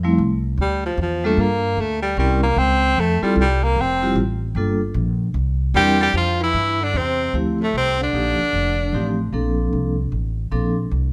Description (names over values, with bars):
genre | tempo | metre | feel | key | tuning
jazz, small-group swing and bop | 151 BPM | 4/4 | swing 65% on 8ths | F major | A4 = 440 Hz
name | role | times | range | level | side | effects
vibraphone with medium hard mallets | accompaniment | 0.0-10.8 s | F3 to Bb4 | -24 LUFS | equal | none
upright bass | bass | 0.0-11.1 s | F1 to G2 | -24 LUFS | equal | none
warm baritone saxophone | second line | 0.6-9.2 s | A2 to C4 | -24 LUFS | equal | none
edgy tenor saxophone | melody | 5.8-9.2 s | A3 to G4 | -22 LUFS | equal | none
room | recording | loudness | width
light reverb | none | -20 LUFS | mono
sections
0.0-6.1 A section; 6.1-11.1 B section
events
baritone saxophone solo 0.0-6.1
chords
0.0 Fmaj9; 0.6 Dmadd9; 1.4 Gm; 2.2 C7b9; 3.0 Fmaj9; 4.6 Gm7; 5.3 C7; 6.1 Fmaj9; 7.7 Cm11; 8.5 F7; 9.3 Bbmaj9